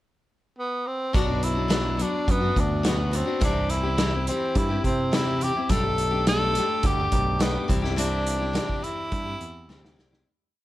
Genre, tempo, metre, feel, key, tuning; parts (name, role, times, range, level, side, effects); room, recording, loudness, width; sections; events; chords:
folk rock and heartland rock; 105 BPM; 4/4; straight; A4 = 441 Hz
breathy tenor saxophone; melody; 0.6-10.0 s; B3 to A4; -27 LUFS; equal
picked steel-string acoustic guitar; accompaniment; 1.1-10.3 s; B2 to G4; -29 LUFS; left 5 dB
picked electric bass; bass; 1.1-10.2 s; B1 to C3; -27 LUFS; equal
vintage drum kit; drums; 1.1-10.3 s; hi-hat, kick drum, snare drum; -27 LUFS; right 1 dB
small room ambience; -22 LUFS; side -15 dB against mid
0.0-1.1 pickup bar; 1.1-10.3 verse
fade-out 8.0-10.3; drum fill 9.7-10.3
0.0 N.C.; 1.1 Bm; 3.4 C; 5.7 Gadd9/B; 7.7 C